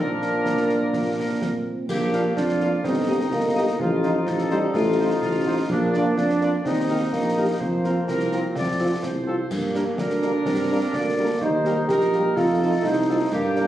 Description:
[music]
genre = military-style march for wind band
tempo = 126 BPM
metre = 2/4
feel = straight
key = Bb major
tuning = A4 = 440 Hz
[part]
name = clear cornet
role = melody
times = 0.0-13.7 s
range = A4 to F5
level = -35 LUFS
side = right 1 dB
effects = none
[part]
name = mellow woodwind section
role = second line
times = 0.0-13.7 s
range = D4 to D5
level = -30 LUFS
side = left 1 dB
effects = none
[part]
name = warm French horn section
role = accompaniment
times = 0.0-13.7 s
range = F3 to G4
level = -26 LUFS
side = left 1 dB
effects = none
[part]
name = clear trombone section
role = sustained chords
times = 0.0-13.7 s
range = Eb3 to Eb4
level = -30 LUFS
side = left 1 dB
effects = none
[part]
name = mellow tuba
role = bass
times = 0.0-13.7 s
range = G1 to Bb2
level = -25 LUFS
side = equal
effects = none
[part]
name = concert snare drum, concert bass drum and clash cymbals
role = drums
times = 0.2-13.7 s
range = none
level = -33 LUFS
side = left 1 dB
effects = none
[part]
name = mellow euphonium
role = second line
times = 0.5-13.7 s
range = F3 to G4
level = -25 LUFS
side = right 2 dB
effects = none
[sound]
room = moderate booth ambience, RT60 0.2 s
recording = recorded on a phone in the room, studio reverb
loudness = -20 LUFS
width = side -12 dB against mid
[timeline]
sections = 0.0-1.9 A section; 1.9-13.7 A section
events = none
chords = 0.0 Bb; 2.8 Eb/G; 3.8 F7/A; 5.7 Bb; 6.7 Eb; 7.6 Fsus4; 8.6 F; 9.5 Gm; 11.4 Eb; 12.4 F7

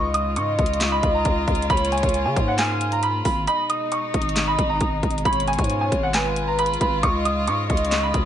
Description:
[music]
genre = hip hop, trap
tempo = 135 BPM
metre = 4/4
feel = half-time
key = unclear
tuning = A4 = 437 Hz
[part]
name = bright grand piano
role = melody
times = 0.0-8.2 s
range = F#5 to D#6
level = -24 LUFS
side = right 2 dB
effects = low-pass filter, ping-pong delay
[part]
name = warm velvety synth lead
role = second line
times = 0.0-8.3 s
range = B4 to E#5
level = -26 LUFS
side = left 1 dB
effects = chorus, ping-pong delay
[part]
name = warm chamber string section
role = sustained chords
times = 0.0-8.3 s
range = B2 to E#4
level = -29 LUFS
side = right 1 dB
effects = none
[part]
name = growling 808-style bass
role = bass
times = 0.0-8.3 s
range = G#1 to C#3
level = -26 LUFS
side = equal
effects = none
[part]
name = trap drum kit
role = drums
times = 0.1-8.2 s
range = handclaps, hi-hat, kick drum, snare drum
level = -24 LUFS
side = equal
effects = none
[sound]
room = light reverb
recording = nothing above 10.8 kHz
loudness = -19 LUFS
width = side -10 dB against mid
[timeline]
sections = 0.0-8.3 A section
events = kick muted 3.5-3.9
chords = 0.0 C#; 3.5 G#m; 7.0 C#

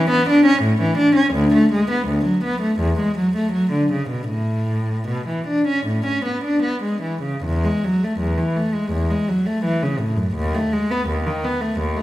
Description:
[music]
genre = classical, baroque-style suite movement for unaccompanied cello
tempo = 72-86 BPM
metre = 4/4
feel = rubato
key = A major, E major from 7.4 s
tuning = A4 = 440 Hz
[part]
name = warm cello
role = solo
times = 0.0-12.0 s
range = D2 to D4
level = -17 LUFS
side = equal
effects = none
[sound]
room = wet recital hall reverb, RT60 1.6 s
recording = minimal, uncompressed stereo recording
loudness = -17 LUFS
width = side -15 dB against mid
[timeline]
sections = 0.0-7.4 A section; 7.4-12.0 A section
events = none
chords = none

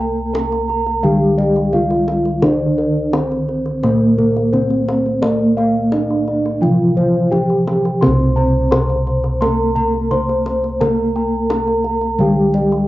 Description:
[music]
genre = Javanese gamelan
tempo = 86 BPM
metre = 4/4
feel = straight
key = C slendro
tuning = A4 = 440 Hz
[part]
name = gamelan-type bronze metallophone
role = melody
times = 0.0-12.9 s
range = Bb3-40c to C5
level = -19 LUFS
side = equal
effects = cassette tape
[part]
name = gamelan-type bronze metallophone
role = accompaniment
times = 0.0-12.9 s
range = C3 to Bb3-40c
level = -20 LUFS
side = equal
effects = cassette tape
[part]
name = gamelan-type bossed gongs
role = arpeggios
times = 0.0-12.9 s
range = Bb4-40c to C6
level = -24 LUFS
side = left 2 dB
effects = cassette tape
[part]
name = gamelan-type bronze metallophone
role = arpeggios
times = 0.0-12.9 s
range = Bb4-40c to C6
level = -25 LUFS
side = right 4 dB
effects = cassette tape
[part]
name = gamelan-type bossed gongs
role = bass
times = 0.0-12.9 s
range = C2 to Bb4-40c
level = -21 LUFS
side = equal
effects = none
[part]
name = kendang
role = percussion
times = 0.3-12.8 s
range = none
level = -24 LUFS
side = left 1 dB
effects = none
[sound]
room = moderate spring reverb, RT60 1.3 s, studio ambience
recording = home recording on cassette, nothing above 7.6 kHz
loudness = -14 LUFS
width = side -16 dB against mid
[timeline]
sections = 0.0-12.9 A section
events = none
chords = none

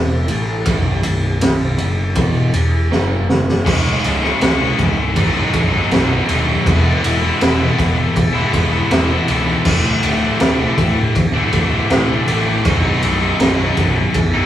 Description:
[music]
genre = quiet-loud alternative rock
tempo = 80 BPM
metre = 4/4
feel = straight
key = unclear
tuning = A4 = 441 Hz
[part]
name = overdriven semi-hollow guitar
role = riff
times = 0.0-14.5 s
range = B1 to E4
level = -22 LUFS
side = right 3 dB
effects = none
[part]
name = fuzz picked electric bass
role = bass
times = 0.0-14.4 s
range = B0 to E2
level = -20 LUFS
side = equal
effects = overdrive
[part]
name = raw garage drum kit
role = drums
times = 0.3-14.3 s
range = crash cymbal, kick drum, ride cymbal, snare drum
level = -17 LUFS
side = equal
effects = none
[part]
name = scooped high-gain guitar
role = riff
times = 3.6-14.5 s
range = B1 to E4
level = -19 LUFS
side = left 4 dB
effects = distortion
[sound]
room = light reverb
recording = rough rehearsal-room recording, small room reverb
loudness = -13 LUFS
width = side -11 dB against mid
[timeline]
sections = 0.0-3.7 A section; 3.7-14.5 B section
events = drum fill 2.9-3.7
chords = 0.0 A5; 0.7 B5; 2.2 E5; 2.9 F#5; 3.7 C#; 5.2 B6; 6.7 E; 9.7 Dsus2; 12.7 B6

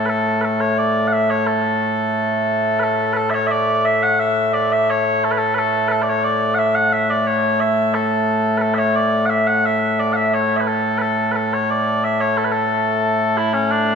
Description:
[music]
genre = scottish traditional, Scottish pipe music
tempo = 88 BPM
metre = 2/4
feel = straight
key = A major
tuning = A4 = 440 Hz
[part]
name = mellow small bagpipes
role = solo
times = 0.0-13.9 s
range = A2 to F#5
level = -16 LUFS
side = equal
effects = none
[sound]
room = wet concert hall reverb, RT60 1.9 s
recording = none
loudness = -16 LUFS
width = side -6 dB against mid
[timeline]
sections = 0.0-2.8 A section; 2.8-13.7 A section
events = none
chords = none

